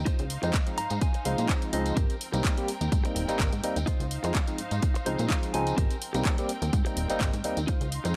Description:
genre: filtered disco house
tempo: 126 BPM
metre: 4/4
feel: swing 54% on 16ths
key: Ab major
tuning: A4 = 440 Hz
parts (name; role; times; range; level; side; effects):
- rich studio string section; sustained chords; 0.0-8.2 s; C4 to C6; -42 LUFS; equal; sidechain pumping, low-pass filter
- plucky analog bass; bass; 0.0-8.1 s; Eb1 to Bb2; -33 LUFS; equal; sidechain pumping, low-pass filter
- direct-recorded clean electric guitar; riff; 0.1-8.1 s; C4 to Bb5; -38 LUFS; equal; sidechain pumping, low-pass filter
- electronic kick drum; drums; 0.1-7.8 s; none; -29 LUFS; equal; overdrive, small room ambience
- house drum kit; drums; 0.1-8.1 s; handclaps, hi-hat; -38 LUFS; equal; overdrive, sidechain pumping on hats, small room ambience
- tambourine; percussion; 0.1-8.1 s; none; -48 LUFS; equal; sidechain pumping on perc, low-pass filter on perc
- barky tine electric piano; accompaniment; 0.4-8.2 s; F3 to G4; -34 LUFS; equal; phaser, sidechain pumping, low-pass filter
room: light reverb, digital ambience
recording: none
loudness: -28 LUFS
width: mono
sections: 0.0-8.2 A section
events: clean electric guitar fill 0.5-2.0, 4.8-5.8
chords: 0.1 Dbmaj9; 2.0 Abmaj9; 3.9 Dbmaj9; 5.8 Abmaj9

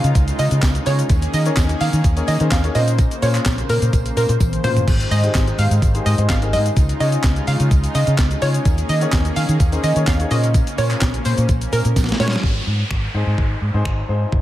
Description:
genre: dance-pop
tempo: 127 BPM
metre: 4/4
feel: straight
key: Ab major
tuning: A4 = 440 Hz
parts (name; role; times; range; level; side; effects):
- analog pluck; melody; 0.0-12.3 s; Bb4 to F5; -24 LUFS; right 1 dB; chorus, sidechain pumping, analog delay
- warm grand piano; accompaniment; 0.0-14.4 s; C4 to Db5; -27 LUFS; left 4 dB; sidechain pumping
- soft supersaw; sustained chords; 0.0-12.4 s; Db3 to C5; -27 LUFS; equal; wide subtle chorus, sidechain pumping
- vintage muted fingered electric bass; bass; 0.0-14.4 s; Ab1 to Eb3; -18 LUFS; equal; sidechain pumping
- clean 12-bit digital drum machine; drums; 0.0-14.4 s; crash cymbal, finger snaps, handclaps, hi-hat, kick drum, shaker, snare drum, toms; -20 LUFS; equal; none
- downlifter; sound effects; 0.0-1.1, 12.4-14.4 s; none; -31 LUFS; equal; none
- tambourine; percussion; 0.2-12.4 s; none; -40 LUFS; right 9 dB; none
room: light reverb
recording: none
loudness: -15 LUFS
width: side -14 dB against mid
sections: 0.0-12.4 A section; 12.4-14.4 B section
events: drop 0.0-12.4; drum fill 4.4-4.9, 12.0-12.4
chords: 0.0 Dbadd9; 1.1 Eb7sus4; 2.8 Bbmadd9; 4.9 Abmaj7; 6.8 Dbadd9; 8.7 Eb7sus4; 10.3 Bbmadd9; 12.4 Ab

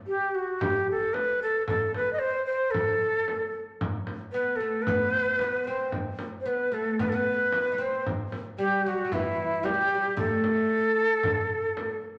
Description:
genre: Arabic maqam ensemble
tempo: 113 BPM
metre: 4/4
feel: straight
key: A minor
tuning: A4 = 440 Hz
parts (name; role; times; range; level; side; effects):
- breathy bright ney; melody; 0.1-12.0 s; E4 to D#5; -28 LUFS; equal; none
- frame drum; percussion; 0.6-11.9 s; none; -37 LUFS; equal; none
- oud; second line; 4.3-12.0 s; E3 to D#4; -34 LUFS; equal; none
room: wet large studio reverb, RT60 1.3 s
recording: none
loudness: -27 LUFS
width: mono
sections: 0.0-12.2 A section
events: none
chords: none

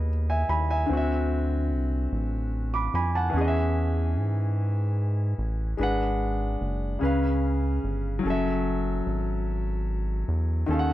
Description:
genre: slow six-eight R&B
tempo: 49 BPM (dotted quarters)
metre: 6/8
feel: straight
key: unclear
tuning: A4 = 436 Hz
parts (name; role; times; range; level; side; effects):
- clear grand piano; accompaniment; 0.0-10.9 s; C#3 to D6; -28 LUFS; left 1 dB; none
- round analog bass; bass; 0.0-10.9 s; F#1 to G#2; -26 LUFS; equal; none
room: light reverb, small room ambience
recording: dark, warm production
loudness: -24 LUFS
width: side -14 dB against mid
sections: 0.0-10.9 A section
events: none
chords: 0.0 C#m9; 0.9 D9; 3.3 E6; 5.8 G#m7b5; 7.0 C#7; 8.2 F#m7

